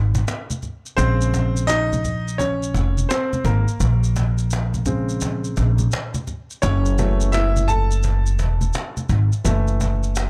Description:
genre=hip hop, jazz-hop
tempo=85 BPM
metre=4/4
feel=swing 65% on 16ths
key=unclear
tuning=A4 = 441 Hz
part: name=warm upright piano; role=accompaniment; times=0.0-10.3 s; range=Db3 to A5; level=-26 LUFS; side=equal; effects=none
part: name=upright bass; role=bass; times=0.0-10.3 s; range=Fb1 to Bb1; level=-22 LUFS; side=equal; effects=none
part: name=cajon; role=drums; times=0.1-10.3 s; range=none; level=-32 LUFS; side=equal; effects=none
part: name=congas and maracas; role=percussion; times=0.1-10.3 s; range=none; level=-32 LUFS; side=equal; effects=none
room=studio ambience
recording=transformer saturation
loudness=-21 LUFS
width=mono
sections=1.0-10.3 A section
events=upright piano solo 1.0-10.3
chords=0.0 Gb7sus2 (rootless); 1.0 Bbm9; 6.6 Gbm7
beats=0.27 | 0.98 1.69 2.39 3.10 | 3.80 4.51 5.21 5.92 | 6.63 7.33 8.04 8.74 | 9.45 10.16

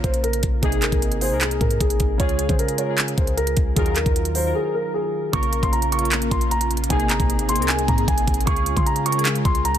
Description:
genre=hip hop, trap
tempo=153 BPM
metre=4/4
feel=half-time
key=Bb minor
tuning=A4 = 440 Hz
part: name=dark concert grand piano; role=melody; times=0.0-9.8 s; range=Ab4 to Db6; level=-24 LUFS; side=right 1 dB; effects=low-pass filter, digital delay
part: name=warbly lo-fi synth keys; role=accompaniment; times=0.0-9.8 s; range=C3 to Bb4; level=-26 LUFS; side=left 1 dB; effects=chorus, low-pass filter
part: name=clean 808-style bass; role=bass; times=0.0-9.8 s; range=Ab1 to Db3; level=-25 LUFS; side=equal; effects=none
part: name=trap drum kit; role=drums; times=0.0-9.8 s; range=handclaps, hi-hat, kick drum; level=-22 LUFS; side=equal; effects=none
part: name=airy breathy pad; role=sustained chords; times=5.7-9.8 s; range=Db3 to Ab4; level=-30 LUFS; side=right 2 dB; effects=chorus
room=little or no reverb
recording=dense, heavily limited modern master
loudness=-18 LUFS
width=side -10 dB against mid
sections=0.0-5.3 A section; 5.3-9.8 B section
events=break 4.5-5.3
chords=0.0 Bbm; 0.6 Abadd9; 2.2 Db; 3.8 Ebmadd9; 5.3 Bbm; 6.9 Abadd9; 8.5 Db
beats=0.24 | 0.63 1.02 1.41 1.80 | 2.20 2.59 2.98 3.37 | 3.77 4.16 4.55 4.94 | 5.33 5.73 6.12 6.51 | 6.90 7.29 7.69 8.08 | 8.47 8.86 9.26 9.65

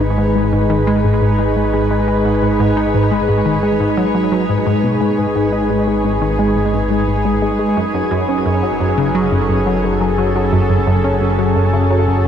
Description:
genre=ambient, sequencer-driven space music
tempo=87 BPM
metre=4/4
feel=straight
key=unclear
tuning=A4 = 440 Hz
part: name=sweeping resonant pad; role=sustained chords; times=0.0-12.3 s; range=F#3 to B4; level=-17 LUFS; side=equal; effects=chorus
part: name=tight sequenced synth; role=riff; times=0.0-12.3 s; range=F#2 to D#4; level=-17 LUFS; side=left 1 dB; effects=chorus, tape echo
part: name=fat analog bass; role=bass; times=0.0-12.3 s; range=G#1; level=-20 LUFS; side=equal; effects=none
part: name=bubbling stepped-filter texture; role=texture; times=0.0-12.3 s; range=C#5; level=-32 LUFS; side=right 2 dB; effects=chorus, built-in reverb
room=moderate shimmer reverb, RT60 8.6 s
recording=cassette tape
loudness=-13 LUFS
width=side -8 dB against mid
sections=0.0-12.3 A section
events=fade-in on synth texture 0.0-12.3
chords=0.0 G#m; 7.8 F#m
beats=0.18 0.87 1.56 | 2.25 2.94 3.63 4.32 | 5.01 5.70 6.39 7.08 | 7.77 8.46 9.15 9.84 | 10.53 11.22 11.91

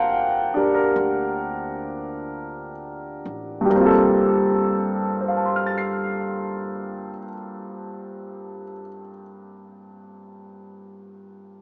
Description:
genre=jazz ballad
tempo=41-50 BPM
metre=4/4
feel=swing 68% on 8ths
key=G minor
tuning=A4 = 440 Hz
part: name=warm grand piano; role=accompaniment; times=0.0-11.6 s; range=G2 to C7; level=-24 LUFS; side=equal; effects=none
part: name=upright bass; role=bass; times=0.0-7.1 s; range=G1 to D2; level=-43 LUFS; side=equal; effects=none
room=wet lush hall reverb, RT60 2.4 s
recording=rough home demo mix, small speaker sound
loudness=-22 LUFS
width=mono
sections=0.0-3.7 A section; 3.7-9.6 B section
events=slowing down 0.0-3.7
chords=0.0 Gm11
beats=0.96 2.29 | 3.72 5.20 6.67 8.14

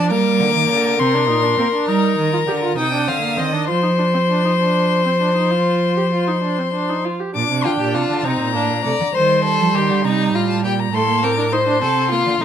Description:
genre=classical, baroque-style fugue for string quartet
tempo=67 BPM (dotted quarters)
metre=12/8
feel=straight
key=unclear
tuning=A4 = 440 Hz
part: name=rich violin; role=melody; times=0.0-12.4 s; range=G5 to Eb6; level=-22 LUFS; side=left 7 dB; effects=none
part: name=clear violin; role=second line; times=0.0-12.4 s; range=D4 to G5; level=-20 LUFS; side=left 2 dB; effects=none
part: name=warm viola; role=accompaniment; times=0.0-12.4 s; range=G3 to G4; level=-22 LUFS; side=right 3 dB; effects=none
part: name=rich cello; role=bass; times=0.0-12.4 s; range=A2 to Bb3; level=-21 LUFS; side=right 3 dB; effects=none
room=light reverb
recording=close, detailed microphones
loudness=-15 LUFS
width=side -9 dB against mid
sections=0.0-7.4 A section; 7.4-12.4 B section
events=none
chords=0.1 Gm; 1.9 Eb; 3.7 F5; 7.4 Cm7; 10.9 Am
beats=| 0.11 0.99 1.88 2.78 | 3.69 4.60 5.52 6.43 | 7.35 8.25 9.15 10.05 | 10.94 11.82

